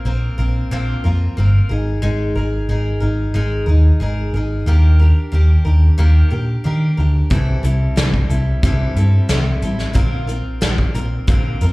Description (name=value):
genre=folk rock and heartland rock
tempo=91 BPM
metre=4/4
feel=straight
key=unclear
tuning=A4 = 440 Hz
part: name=picked steel-string acoustic guitar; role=accompaniment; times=0.0-11.7 s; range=Bb2 to Bb4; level=-24 LUFS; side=left 1 dB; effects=none
part: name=picked electric bass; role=bass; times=0.1-11.7 s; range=G1 to Eb3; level=-15 LUFS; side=equal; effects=none
part: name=soft brush drum kit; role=drums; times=7.3-11.7 s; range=hi-hat, kick drum, snare drum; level=-19 LUFS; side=equal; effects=none
room=little or no reverb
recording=live gig heard through the venue's PA, club reverb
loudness=-14 LUFS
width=side -22 dB against mid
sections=0.0-11.7 A section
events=none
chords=0.0 Bbadd9; 1.7 Absus2; 4.7 Ebmaj7; 7.3 C6; 10.0 Bbadd9